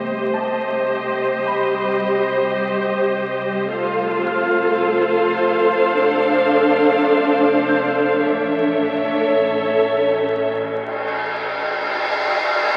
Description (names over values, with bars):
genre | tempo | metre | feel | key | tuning
cinematic | 53 BPM | 4/4 | straight | unclear | A4 = 443 Hz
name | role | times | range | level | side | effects
rich studio violin section | melody | 0.0-10.5 s | Eb5 to F5 | -28 LUFS | equal | none
rich studio violin section | second line | 0.0-10.5 s | C5 to C#5 | -25 LUFS | equal | none
warm studio viola section | accompaniment | 0.0-10.5 s | G4 to A4 | -23 LUFS | equal | none
rich studio double bass section | bass | 0.0-10.5 s | F1 to C2 | -36 LUFS | equal | none
warm studio cello section | bass | 0.0-10.5 s | G3 to F4 | -25 LUFS | equal | none
concert harp | texture | 0.3-10.5 s | A5 to G6 | -32 LUFS | equal | none
cymbal swell | sound effects | 10.1-12.8 s | none | -23 LUFS | equal | none
room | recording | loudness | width
wet cathedral reverb, RT60 4.5 s | very old 78 rpm record, vinyl crackle | -19 LUFS | mono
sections
0.0-12.8 A section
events
cymbal swell 10.1-12.8; break 10.5-12.8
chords
0.0 Cm; 3.7 F; 8.2 A